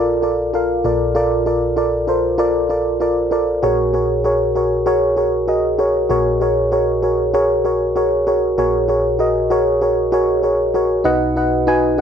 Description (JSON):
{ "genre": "pop", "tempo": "97 BPM", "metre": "4/4", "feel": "swing 55% on 16ths", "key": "unclear", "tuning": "A4 = 441 Hz", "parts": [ { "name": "mellow FM electric piano", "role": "solo", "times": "0.0-12.0 s", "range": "Bb1 to G#5", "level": "-15 LUFS", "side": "equal", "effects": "chorus" } ], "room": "light reverb", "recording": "dry, close 1970s-style studio recording", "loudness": "-15 LUFS", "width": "side -8 dB against mid", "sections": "0.0-8.6 A section; 8.6-11.1 B section", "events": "none", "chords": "0.0 Bbmaj7; 3.6 Gbadd9/Bb; 11.1 B", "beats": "0.54 | 1.16 1.78 2.40 3.01 | 3.63 4.25 4.87 5.49 | 6.11 6.72 7.34 7.96 | 8.58 9.20 9.82 10.44 | 11.05 11.67" }